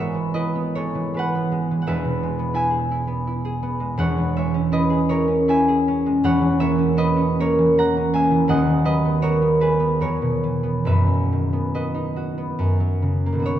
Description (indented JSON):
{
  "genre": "classical, solo harp piece",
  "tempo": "67-88 BPM",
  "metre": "3/4",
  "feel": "rubato",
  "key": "E major, B major from 4.0 s",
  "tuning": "A4 = 440 Hz",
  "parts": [
    { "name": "concert harp", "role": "solo", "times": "0.0-13.6 s", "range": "D#1 to A#5", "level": "-18 LUFS", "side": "right 1 dB", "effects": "none" }
  ],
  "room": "wet concert hall reverb, RT60 2.1 s",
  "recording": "dark, warm production",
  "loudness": "-18 LUFS",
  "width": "side -11 dB against mid",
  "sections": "0.0-13.4 A section",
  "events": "none",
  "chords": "0.0 E/G#; 1.9 E; 4.0 C#m/E; 8.5 B/D#; 10.0 E; 10.8 B/F#; 12.6 F#"
}